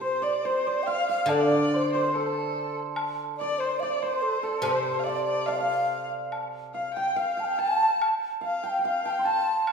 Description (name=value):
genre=chinese traditional, Chinese chamber ensemble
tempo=72 BPM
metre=2/4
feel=rubato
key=C zhi mode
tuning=A4 = 440 Hz
part: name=low xiao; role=melody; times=0.0-9.7 s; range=A4 to A5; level=-28 LUFS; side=equal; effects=none
part: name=hammered dulcimer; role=second line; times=0.0-9.7 s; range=F4 to C6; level=-29 LUFS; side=right 3 dB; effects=none
part: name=rich erhu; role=second line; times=0.0-9.6 s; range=A4 to A5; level=-31 LUFS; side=left 3 dB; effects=none
part: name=guzheng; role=accompaniment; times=0.0-7.2 s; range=C3 to D3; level=-29 LUFS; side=left 1 dB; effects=none
part: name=woodblock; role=percussion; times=1.3-9.7 s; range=none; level=-35 LUFS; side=left 3 dB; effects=none
room=wet recital hall reverb, RT60 1.7 s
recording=recorded in a church or concert hall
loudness=-24 LUFS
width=side -5 dB against mid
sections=0.0-9.7 A section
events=none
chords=none